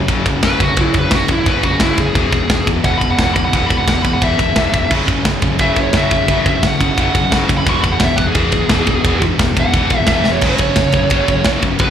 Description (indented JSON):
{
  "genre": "heavy metal",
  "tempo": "174 BPM",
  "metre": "4/4",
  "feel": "straight",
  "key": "unclear",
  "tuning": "A4 = 441 Hz",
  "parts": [
    { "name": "tight distorted guitar", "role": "riff", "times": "0.0-11.9 s", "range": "E2 to F#3", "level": "-21 LUFS", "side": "left 9 dB", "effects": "distortion, slapback echo" },
    { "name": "tight distorted guitar", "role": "riff", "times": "0.0-11.9 s", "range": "E2 to F#3", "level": "-24 LUFS", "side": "right 2 dB", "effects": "distortion, slapback echo" },
    { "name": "fuzz picked electric bass", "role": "bass", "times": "0.0-11.9 s", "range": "E1 to F#1", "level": "-20 LUFS", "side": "equal", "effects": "overdrive" },
    { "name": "tight metal drum kit", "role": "drums", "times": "0.1-11.9 s", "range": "crash cymbal, kick drum, ride cymbal, snare drum", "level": "-16 LUFS", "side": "equal", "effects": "none" },
    { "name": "high-gain lead guitar", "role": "melody", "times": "0.4-11.9 s", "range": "E4 to C#6", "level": "-18 LUFS", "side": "right 1 dB", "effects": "distortion, slapback echo" },
    { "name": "scooped high-gain guitar", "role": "riff", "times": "4.9-11.9 s", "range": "E2 to F#3", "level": "-23 LUFS", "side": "right 10 dB", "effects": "distortion, slapback echo" }
  ],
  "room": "little or no reverb",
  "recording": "live gig heard through the venue's PA, club reverb",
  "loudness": "-12 LUFS",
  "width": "side -9 dB against mid",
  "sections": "0.0-11.9 A section",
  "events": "lead electric guitar solo 0.0-11.9; drum fill 10.3",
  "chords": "0.0 F#5; 2.2 E5; 4.9 F#5; 7.7 E; 10.4 F#5"
}